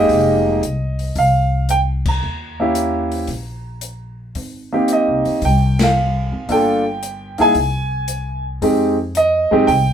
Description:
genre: jazz piano trio.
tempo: 113 BPM.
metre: 4/4.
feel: swing 69% on 8ths.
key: unclear.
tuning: A4 = 441 Hz.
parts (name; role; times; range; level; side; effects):
warm grand piano; melody; 0.0-9.9 s; G#3 to Bb5; -16 LUFS; right 1 dB; none.
upright bass; bass; 0.0-9.9 s; F1 to G2; -21 LUFS; left 1 dB; none.
open jazz drum kit; drums; 0.1-9.9 s; crash cymbal, hi-hat, kick drum, ride cymbal, snare drum; -26 LUFS; left 3 dB; none.
room: moderate studio reverb, RT60 0.5 s.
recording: band playing live in one room.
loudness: -15 LUFS.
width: side -8 dB against mid.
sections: 0.0-9.9 A section.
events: band accent 2.0, 5.7.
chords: 0.1 Fm11; 2.2 Eb7b9; 4.4 Abmaj7; 6.5 Gm9; 7.6 Ab/C; 8.6 Fm9.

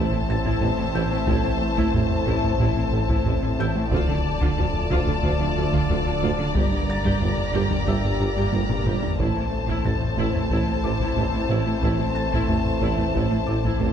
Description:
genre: cinematic, hybrid orchestral and electronic film score.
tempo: 91 BPM.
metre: 4/4.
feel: straight.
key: unclear.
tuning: A4 = 441 Hz.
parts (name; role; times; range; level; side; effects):
rich chamber violin section; melody; 0.0-13.9 s; A5 to Bb5; -31 LUFS; left 6 dB; none.
warm symphonic violin section; second line; 0.0-13.9 s; C5 to D5; -32 LUFS; left 4 dB; none.
rich symphonic viola section; accompaniment; 0.0-13.9 s; E4 to G4; -34 LUFS; equal; none.
sweeping resonant pad; sustained chords; 0.0-13.9 s; E3 to E5; -36 LUFS; right 1 dB; none.
warm French horn section; sustained chords; 0.0-13.9 s; C4 to G4; -33 LUFS; left 4 dB; none.
warm trombone section; sustained chords; 0.0-13.9 s; D3 to Bb3; -34 LUFS; right 5 dB; none.
harp-like synth pluck; arpeggios; 0.0-13.9 s; D3 to A4; -32 LUFS; right 4 dB; none.
round analog bass; riff; 0.0-13.9 s; D2 to A3; -30 LUFS; left 3 dB; none.
clear tuba; bass; 0.0-13.9 s; G1 to D2; -32 LUFS; right 4 dB; none.
rich symphonic double bass section; bass; 0.0-13.9 s; G1 to D2; -30 LUFS; right 4 dB; none.
snarling distorted saw bass; bass; 0.0-13.9 s; D1 to A1; -30 LUFS; equal; distortion.
felt-muted upright piano; texture; 0.0-13.9 s; E5 to A6; -40 LUFS; left 1 dB; digital delay.
rich symphonic cello section; bass; 0.1-13.9 s; G2 to D3; -30 LUFS; right 4 dB; none.
taiko ensemble; drums; 0.5-13.9 s; none; -27 LUFS; equal; none.
room: moderate scoring stage reverb, RT60 2.0 s.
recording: dark, warm production.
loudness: -20 LUFS.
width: side -8 dB against mid.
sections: 0.0-13.9 A section.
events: drum fill 8.5-9.2.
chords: 0.0 Am; 3.9 Dm; 6.6 Gm; 9.2 Am.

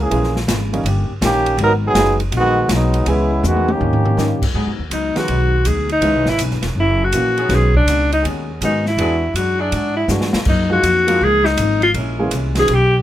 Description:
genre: jazz, big band swing.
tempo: 162 BPM.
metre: 4/4.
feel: swing 66% on 8ths.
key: G# minor from 4.5 s.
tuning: A4 = 441 Hz.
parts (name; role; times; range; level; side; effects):
clear trombone section; second line; 0.0-4.4 s; D#3 to A#4; -17 LUFS; right 1 dB; none.
upright bass; bass; 0.0-13.0 s; E1 to G#2; -19 LUFS; equal; none.
vintage hollow-body jazz guitar; accompaniment; 0.1-13.0 s; F#2 to G4; -28 LUFS; left 5 dB; none.
warm baby grand piano; accompaniment; 0.1-12.7 s; D#3 to G#4; -23 LUFS; right 2 dB; none.
open jazz drum kit; drums; 0.1-12.8 s; crash cymbal, hi-hat, kick drum, ride cymbal, snare drum, toms; -23 LUFS; equal; none.
warm saxophone section; sustained chords; 4.5-12.5 s; D#3 to B4; -29 LUFS; left 1 dB; none.
bright alto saxophone; melody; 4.9-13.0 s; D4 to G#4; -16 LUFS; left 1 dB; none.
room: little or no reverb.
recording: close, detailed microphones.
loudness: -14 LUFS.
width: side -12 dB against mid.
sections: 0.0-4.5 A section; 4.5-13.0 B section.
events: trombone section solo 0.0-4.5; drum fill 3.4-4.2, 10.1-10.5; alto saxophone solo 4.5-13.0.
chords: 0.1 A#m7b5; 0.8 D#7; 1.6 G#m7; 3.1 C#m7; 3.8 D#7; 4.5 G#m7; 6.0 C#m9; 6.8 F#7; 7.5 B69; 9.0 E9; 10.5 F#maj13; 11.9 A#m7b5.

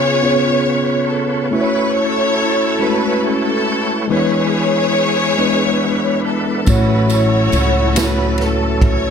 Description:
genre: slow gospel.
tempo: 47 BPM (dotted quarters).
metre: 6/8.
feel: straight.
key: A major.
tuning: A4 = 440 Hz.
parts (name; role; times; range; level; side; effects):
warm studio string section; melody; 0.0-9.1 s; C#4 to C#5; -18 LUFS; left 2 dB; none.
mellow tine electric piano; accompaniment; 0.0-9.1 s; A2 to C#5; -17 LUFS; left 1 dB; medium stereo tremolo.
overdriven tonewheel organ; sustained chords; 0.0-9.1 s; E3 to C#5; -24 LUFS; right 4 dB; fast rotary speaker, chorus vibrato.
upright bass; bass; 6.7-9.1 s; A1 to C#2; -18 LUFS; right 1 dB; none.
swinging big-band drum kit; drums; 6.7-9.0 s; kick drum, ride cymbal, snare drum; -18 LUFS; right 1 dB; none.
tambourine; percussion; 6.7-8.4 s; none; -28 LUFS; right 6 dB; none.
room: light reverb.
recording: none.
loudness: -13 LUFS.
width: side -7 dB against mid.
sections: 0.0-9.1 A section.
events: none.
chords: 0.0 C#7; 1.5 F#m7; 4.1 E7; 6.7 A6.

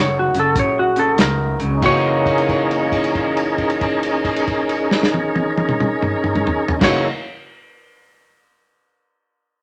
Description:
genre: electric blues shuffle.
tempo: 90 BPM.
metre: 4/4.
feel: swing 65% on 8ths.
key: F# mixolydian.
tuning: A4 = 440 Hz.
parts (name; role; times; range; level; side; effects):
clean lap steel guitar; melody; 0.0-7.1 s; F#4 to C#5; -24 LUFS; equal; none.
electric guitar through a small old amp; riff; 0.0-7.1 s; F#2 to D#4; -27 LUFS; equal; none.
upright bass; bass; 0.0-7.0 s; F#1 to C#2; -28 LUFS; equal; none.
warm soul drum kit; drums; 0.3-7.0 s; crash cymbal, hi-hat, kick drum, snare drum, toms; -24 LUFS; equal; none.
tonewheel organ; accompaniment; 1.7-7.1 s; C#4 to A#4; -22 LUFS; equal; slow rotary speaker, overdrive, chorus vibrato.
clear upright piano; second line; 1.8-7.1 s; A#3 to F#4; -30 LUFS; equal; none.
room: moderate large studio reverb, RT60 0.9 s.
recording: none.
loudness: -18 LUFS.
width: mono.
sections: 0.0-1.8 A section; 1.8-7.1 B section.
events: slowing down 0.0-1.8; held note 1.8-6.7.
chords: 0.0 F#13.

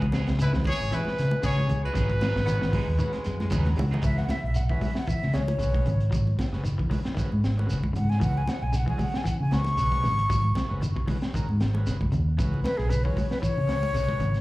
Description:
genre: afrobeat.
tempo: 115 BPM.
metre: 4/4.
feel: swing 55% on 16ths.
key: C# minor.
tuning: A4 = 440 Hz.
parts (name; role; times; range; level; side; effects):
koto; second line; 0.0-4.0 s; D#4 to G#4; -39 LUFS; left 2 dB; slapback echo.
combo organ; accompaniment; 0.0-14.2 s; G#3 to B4; -40 LUFS; right 2 dB; spring reverb, slapback echo.
electric guitar at the edge of break-up; stabs; 0.0-4.0 s; F#3 to G#4; -40 LUFS; right 5 dB; spring reverb, slapback echo.
fingered electric bass; bass; 0.0-14.4 s; F#1 to C#3; -25 LUFS; equal; none.
crunchy breakbeat drum kit; drums; 0.0-14.4 s; hi-hat, kick drum, snare drum; -31 LUFS; equal; none.
congas; percussion; 0.0-14.3 s; none; -34 LUFS; right 1 dB; none.
shekere; percussion; 0.1-14.4 s; none; -36 LUFS; right 1 dB; none.
breathy trumpet; melody; 0.4-3.5 s; B4 to C#5; -30 LUFS; equal; slapback echo.
clean electric guitar; arpeggios; 0.4-14.3 s; B2 to F#3; -34 LUFS; left 2 dB; tape echo.
raspy baritone saxophone; second line; 2.5-4.0 s; F#3 to B3; -38 LUFS; equal; slapback echo, tape echo.
breathy concert flute; melody; 4.0-14.4 s; G#4 to C#6; -30 LUFS; left 2 dB; slapback echo.
room: light reverb.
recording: live gig heard through the venue's PA, club reverb.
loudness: -23 LUFS.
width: side -18 dB against mid.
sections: 0.0-4.0 A section; 4.0-14.4 B section.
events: drum fill 3.4-4.0; flute solo 4.0-14.4.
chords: 0.0 C#m7; 2.0 G#m7; 4.0 C#m7; 6.1 G#m7; 8.2 C#m7; 10.3 G#m7; 12.4 C#m7.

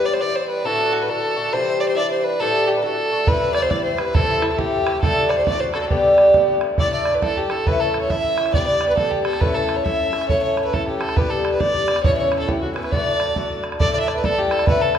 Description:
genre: celtic folk, Celtic polka.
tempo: 137 BPM.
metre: 2/4.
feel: swing 63% on 8ths.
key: G major, D major from 6.8 s.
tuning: A4 = 440 Hz.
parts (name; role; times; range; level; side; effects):
dark fiddle; melody; 0.0-15.0 s; E4 to E5; -21 LUFS; right 1 dB; none.
fingerpicked twelve-string acoustic guitar; accompaniment; 0.0-15.0 s; D2 to A4; -21 LUFS; left 1 dB; none.
bodhran; percussion; 3.3-15.0 s; none; -23 LUFS; right 2 dB; none.
room: wet recital hall reverb, RT60 1.7 s.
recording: recorded in a church or concert hall.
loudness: -17 LUFS.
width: side -9 dB against mid.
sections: 0.0-6.8 A section; 6.8-13.8 B section; 13.8-15.0 B section.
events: none.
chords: 0.0 Em; 0.6 D; 1.5 Cadd9; 2.4 Dsus4; 2.8 D; 3.3 C; 4.1 Am/C; 5.0 Dsus4; 5.5 D; 5.9 Gadd9; 6.8 Dsus2; 7.7 A; 8.5 G; 9.4 A; 11.2 G; 12.0 Aadd9; 12.9 D; 13.8 Dsus2.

